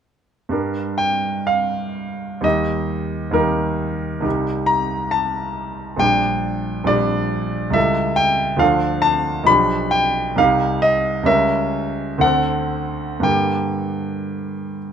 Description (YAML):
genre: classical, romantic character piece for solo piano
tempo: 56-72 BPM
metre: 2/4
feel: rubato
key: G minor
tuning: A4 = 444 Hz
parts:
  - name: clear concert grand piano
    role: solo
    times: 0.5-14.9 s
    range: Bb1 to B5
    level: -17 LUFS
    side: equal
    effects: none
room: light reverb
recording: close, detailed microphones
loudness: -17 LUFS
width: side -8 dB against mid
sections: 0.5-14.9 A section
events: none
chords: 0.5 Gm; 2.4 Eb; 4.3 Cm; 6.0 Gm/Bb; 7.8 A7/C#; 8.6 Dm; 9.5 G7/B; 10.4 Cm; 11.3 C#dim7; 12.2 D7; 13.3 Gm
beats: | 0.52 1.48 | 2.44 3.36 | 4.25 5.14 | 6.01 6.88 | 7.76 8.61 | 9.47 10.37 | 11.26 12.22 | 13.25 14.27